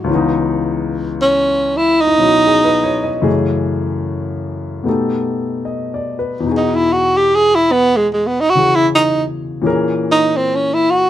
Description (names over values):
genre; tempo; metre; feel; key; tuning
jazz ballad; 75 BPM; 4/4; swing 66% on 8ths; unclear; A4 = 441 Hz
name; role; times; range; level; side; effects
breathy tenor saxophone; melody; 0.0-11.1 s; G#3 to G#4; -12 LUFS; right 1 dB; none
warm grand piano; accompaniment; 0.0-11.1 s; C#2 to D#5; -18 LUFS; left 3 dB; none
room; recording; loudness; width
little or no reverb; close, detailed microphones; -13 LUFS; side -12 dB against mid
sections
0.0-11.1 A section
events
tenor saxophone solo 0.0-11.1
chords
0.1 C#m9; 3.3 F#m9; 4.9 Baug7; 6.5 Emaj9; 9.7 A#m7b5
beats
| 0.08 0.88 1.67 2.47 | 3.27 4.06 4.86 5.66 | 6.46 7.26 8.06 8.86 | 9.65 10.45